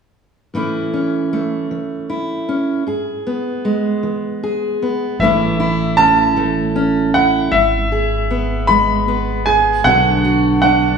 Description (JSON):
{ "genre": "folk", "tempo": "52 BPM (dotted quarters)", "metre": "6/8", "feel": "straight", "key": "A major", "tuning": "A4 = 445 Hz", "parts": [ { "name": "fingerpicked steel-string acoustic guitar", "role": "accompaniment", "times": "0.5-11.0 s", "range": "G#2 to G#4", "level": "-18 LUFS", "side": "right 1 dB", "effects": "none" }, { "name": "bright upright piano", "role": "melody", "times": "5.2-11.0 s", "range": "E5 to B5", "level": "-15 LUFS", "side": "right 1 dB", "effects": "none" }, { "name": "fingered electric bass", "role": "bass", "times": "5.2-11.0 s", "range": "G#1 to B1", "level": "-20 LUFS", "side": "right 1 dB", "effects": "none" } ], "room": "wet recital hall reverb, RT60 1.5 s", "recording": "recorded in a church or concert hall, small room ambience", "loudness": "-14 LUFS", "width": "side -6 dB against mid", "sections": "0.5-5.2 A section; 5.2-11.0 B section", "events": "none", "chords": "0.5 A; 2.9 E/G#; 5.2 A; 7.5 E/G#; 9.8 Bm" }